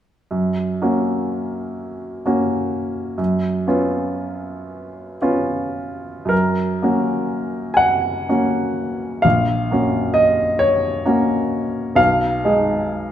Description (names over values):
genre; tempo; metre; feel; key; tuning
classical, romantic nocturne for solo piano; 35-45 BPM (dotted quarters); 12/8; rubato; F# major; A4 = 440 Hz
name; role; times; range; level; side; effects
warm upright piano; solo; 0.3-13.1 s; A#1 to G#5; -17 LUFS; equal; none
room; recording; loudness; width
wet recital hall reverb, RT60 1.4 s; none; -17 LUFS; side -10 dB against mid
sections
0.3-6.3 A section; 6.3-13.1 B section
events
none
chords
0.3 F#; 3.2 C#7/F#; 6.3 F#; 9.2 F#/A#; 12.0 G#m/B